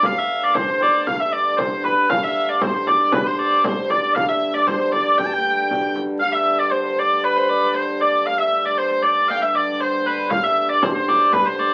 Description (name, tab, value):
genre	medieval dance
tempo	117 BPM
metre	2/4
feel	straight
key	G mixolydian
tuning	A4 = 442 Hz
part	rich hurdy-gurdy	melody	0.0-11.7 s	B4 to G5	-21 LUFS	equal	none
part	bright shawm	second line	0.0-11.7 s	B4 to A5	-25 LUFS	equal	none
part	pedal harmonium	drone	0.0-11.7 s	G2 to D3	-29 LUFS	equal	none
part	frame drum	percussion	0.0-6.2, 10.3-11.6 s	none	-29 LUFS	equal	none
room	moderate small room reverb, RT60 0.5 s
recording	very old 78 rpm record, vinyl crackle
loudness	-19 LUFS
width	mono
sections	0.0-6.2 A section; 6.2-11.7 A section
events	none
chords	none